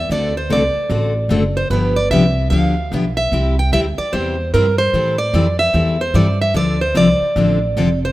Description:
acoustic string swing (jazz manouche); 149 BPM; 4/4; swing 63% on 8ths; A4 = 440 Hz
picked plugged-in steel-string acoustic guitar; melody; 0.0-8.1 s; Bb4 to G5; -18 LUFS; right 1 dB
upright bass; bass; 0.0-8.1 s; F1 to A2; -19 LUFS; right 1 dB
picked steel-string acoustic guitar; accompaniment; 0.1-7.9 s; C3 to A4; -19 LUFS; left 2 dB
light reverb, small room ambience; rough home demo mix; -14 LUFS; side -16 dB against mid
0.0-8.1 A section
0.1 D7; 1.7 G7; 3.3 C; 4.9 Am7; 6.5 Dm7

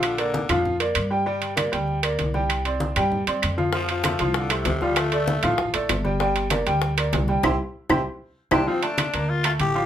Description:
latin, salsa; 194 BPM; 4/4; straight; A4 = 440 Hz
raspy tenor saxophone; melody; 0.0-0.7, 3.7-5.6, 8.5-9.9 s; C3 to G4; -27 LUFS; left 4 dB
bright upright piano; accompaniment; 0.0-9.9 s; F3 to Bb5; -24 LUFS; right 1 dB
upright bass; bass; 0.0-9.9 s; G1 to G2; -27 LUFS; equal
claves; percussion; 0.0-9.6 s; -31 LUFS; left 2 dB
congas; percussion; 0.0-9.8 s; -30 LUFS; left 1 dB
timbales; percussion; 0.0-9.8 s; -26 LUFS; right 6 dB
bongos; percussion; 3.7-8.6 s; -30 LUFS; left 5 dB
wet studio ambience, RT60 0.5 s; band playing live in one room; -20 LUFS; side -10 dB against mid
0.0-8.7 A section; 8.7-9.9 B section
band accent 7.4-8.7; drum fill 8.1-8.7
0.0 Bb; 1.3 Gm; 2.5 Csus2; 3.7 F; 5.0 Dm; 6.2 Gm; 7.4 C; 8.7 Bbmaj7

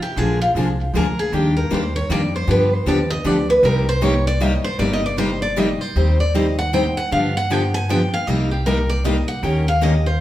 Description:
acoustic string swing (jazz manouche); 155 BPM; 3/4; swing 61% on 8ths; C minor; A4 = 440 Hz
picked steel-string acoustic guitar; melody; 0.0-10.2 s; F4 to Ab5; -22 LUFS; equal; tape echo
picked steel-string acoustic guitar; accompaniment; 0.2-9.9 s; C3 to C5; -23 LUFS; left 3 dB
picked steel-string acoustic guitar; accompaniment; 0.2-9.9 s; C3 to C5; -24 LUFS; right 2 dB
upright bass; bass; 0.2-10.2 s; G1 to G2; -21 LUFS; equal
wet club reverb, RT60 0.8 s; heard from further back in the room; -16 LUFS; side -14 dB against mid
0.0-6.0 A section; 6.0-10.2 A section
steel-string acoustic guitar solo 0.0-10.2
0.2 Bb7; 1.3 Ebmaj7; 2.5 G7; 3.6 Cm7; 6.0 Eb6; 7.1 G7; 8.3 Cm7; 9.4 Eb7

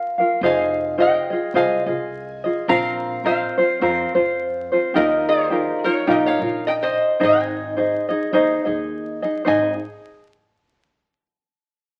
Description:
Hawaiian; 106 BPM; 4/4; swing 57% on 8ths; Ab major; A4 = 440 Hz
lap resonator guitar; melody; 0.0-9.8 s; Ab4 to Bb5; -24 LUFS; equal
tenor ukulele; accompaniment; 0.0-10.2 s; C4 to F5; -21 LUFS; equal
upright bass; bass; 0.4-9.8 s; F1 to F2; -35 LUFS; equal
moderate studio reverb, RT60 0.9 s; very old 78 rpm record, vinyl crackle; -20 LUFS; mono
0.0-9.5 A section; 9.5-11.7 B section
0.4 Fm7; 2.7 Bbsus2; 4.9 Ebadd9; 7.2 Ab; 9.5 Ab5

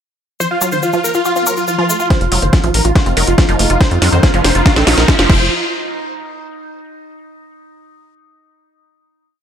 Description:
psychedelic trance; 141 BPM; 4/4; straight; A4 = 440 Hz
dense compressed supersaw; melody; 0.4-5.5 s; F4 to C5; -18 LUFS; right 1 dB; phaser, sidechain pumping, low-pass filter, digital delay
overtone-sweeping drone; sustained chords; 1.1-5.3 s; Eb4 to F4; -24 LUFS; equal; chorus, built-in reverb, sidechain pumping
wide unison pluck; riff; 0.4-5.5 s; Eb3 to Gb4; -21 LUFS; right 1 dB; auto-pan, sidechain pumping, digital delay
cabasa; percussion; 0.4-2.1 s; -22 LUFS; left 5 dB
electronic kick drum; drums; 2.1-5.4 s; -12 LUFS; equal
techno drum kit; drums; 2.1-5.4 s; crash cymbal, hi-hat, snare drum; -18 LUFS; equal; low-pass filter on snare, low-pass filter on hats, low-pass filter on cymbals, low-pass filter on room
riser; sound effects; 3.7-5.5 s; -22 LUFS; right 1 dB
tight sequencer bass; bass; 2.2-5.5 s; F1 to F2; -15 LUFS; equal
vowel-sweep wobble bass; second line; 4.2-5.3 s; C4 to Eb4; -29 LUFS; right 2 dB
light reverb; -11 LUFS; side -8 dB against mid
0.4-2.1 intro; 2.1-5.5 build; 5.5-7.2 final hit
build-up 2.1-5.5; drum fill 2.1-5.5; filter sweep on synth arpeggio sound 2.1-5.5; filter sweep on supersaw synth 2.1-5.5; riser 3.7-5.5
0.4 F5; 5.5 N.C.

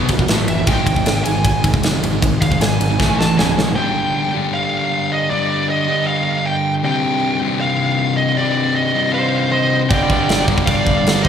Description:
heavy metal; 156 BPM; 4/4; straight; A4 = 440 Hz
pipe organ, principal; sustained chords; 0.0-11.3 s; A2 to A5; -29 LUFS; right 2 dB
sludgy distorted guitar; riff; 0.0-11.3 s; C2 to A3; -20 LUFS; left 3 dB; overdrive
tight distorted guitar; riff; 0.0-3.8, 9.9-11.3 s; Db2 to A3; -22 LUFS; right 5 dB; distortion
fuzz picked electric bass; bass; 0.0-3.7, 9.9-11.3 s; Db1 to G2; -22 LUFS; right 1 dB; overdrive
tight metal drum kit; drums; 0.1-3.7, 9.9-11.3 s; crash cymbal, kick drum, ride cymbal, snare drum; -18 LUFS; equal
high-gain lead guitar; melody; 0.5-11.3 s; D5 to A5; -20 LUFS; right 1 dB; distortion
high-gain lead guitar; second line; 9.1-11.3 s; C5 to D5; -22 LUFS; right 3 dB; distortion
wet church reverb, RT60 3.4 s; band playing live in one room; -14 LUFS; side -8 dB against mid
0.0-3.8 A section; 3.8-11.3 B section
lead electric guitar solo 0.0-3.8; drum fill 3.0-3.8
0.3 A5; 0.7 Ab; 3.0 A5; 3.4 Db5; 3.8 Gm; 6.8 Cm; 9.9 Gm

